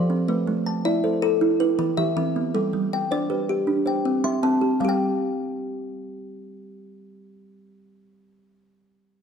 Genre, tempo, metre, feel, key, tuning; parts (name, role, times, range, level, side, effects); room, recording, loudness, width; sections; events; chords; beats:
southern african traditional, mbira-style interlocking cycle; 106 BPM (dotted quarters); 12/8; straight; A4 = 440 Hz
kalimba; arpeggios; 0.0-8.6 s; E3 to C6; -24 LUFS; left 3 dB
kalimba; arpeggios; 0.0-8.6 s; E3 to A5; -25 LUFS; right 5 dB; slapback echo
wet recital hall reverb, RT60 1.8 s; dark, warm production; -21 LUFS; side -7 dB against mid
0.0-4.8 A section; 4.8-7.1 B section
0.3 Am; 1.4 Em; 2.5 G; 3.7 C; 4.8 Fsus2/G
| 0.28 0.85 1.42 1.98 | 2.55 3.11 3.68 4.24 | 4.81 5.37 5.94 6.50